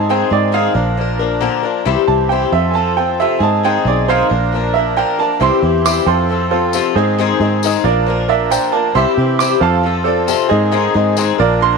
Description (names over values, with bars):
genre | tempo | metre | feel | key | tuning
folk rock and heartland rock | 135 BPM | 4/4 | straight | unclear | A4 = 440 Hz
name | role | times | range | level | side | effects
bright upright piano | second line | 0.0-11.8 s | C5 to D6 | -18 LUFS | right 13 dB | slapback echo
picked swing-style acoustic guitar | accompaniment | 0.0-11.8 s | F2 to Bb4 | -17 LUFS | left 13 dB | none
accordion | sustained chords | 0.0-11.8 s | Eb3 to Bb4 | -24 LUFS | right 2 dB | light tremolo tuning
fingered electric bass | bass | 0.0-11.8 s | Bb1 to C3 | -18 LUFS | right 1 dB | none
clear concert grand piano | accompaniment | 5.4-11.8 s | Eb4 to F5 | -20 LUFS | right 16 dB | none
tambourine | percussion | 5.9-11.3 s | none | -25 LUFS | left 13 dB | none
room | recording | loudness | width
light reverb, small room ambience | 1960s-style stereo with parts hard left and right | -12 LUFS | side -4 dB against mid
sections
0.0-11.8 A section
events
upright piano solo 0.0-11.8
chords
0.0 Ab; 0.8 Bb; 1.9 C; 2.5 F; 3.4 Ab; 4.3 Bb; 5.4 C; 6.1 F; 7.0 Ab; 7.8 Bb; 9.0 C; 9.6 F; 10.5 Ab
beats
| 0.09 0.53 0.98 1.42 | 1.86 2.31 2.75 3.19 | 3.64 4.08 4.53 4.97 | 5.41 5.85 6.30 6.74 | 7.18 7.63 8.07 8.51 | 8.96 9.40 9.85 10.29 | 10.73 11.18 11.62